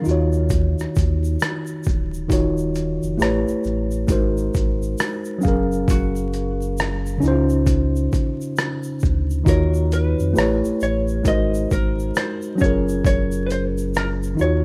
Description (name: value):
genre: lo-fi hip hop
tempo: 67 BPM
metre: 4/4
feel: swing 62% on 16ths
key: Eb dorian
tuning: A4 = 443 Hz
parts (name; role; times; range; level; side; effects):
- vintage hollow-body jazz guitar; melody; 0.0-14.6 s; Gb4 to F5; -30 LUFS; equal; low-pass filter
- mellow tine electric piano; accompaniment; 0.0-14.6 s; Db3 to F5; -24 LUFS; equal; cassette tape, low-pass filter
- tube shaker; percussion; 0.0-14.6 s; none; -45 LUFS; equal; none
- sub bass with octave; bass; 0.1-14.6 s; D1 to F2; -25 LUFS; equal; none
- trip hop sampler-style drum kit; drums; 0.1-14.6 s; hi-hat, kick drum, rim click, shaker; -24 LUFS; equal; none
room: little or no reverb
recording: rough home demo mix, vinyl crackle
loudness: -21 LUFS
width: mono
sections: 0.0-2.3 A section; 2.3-14.6 B section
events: none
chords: 0.1 Ebm9; 3.2 A9; 4.1 Ab9; 5.4 Gbmaj9; 7.2 Dbmaj7; 9.5 Ebm9; 10.4 A9; 11.3 Ab9; 12.6 Gbmaj9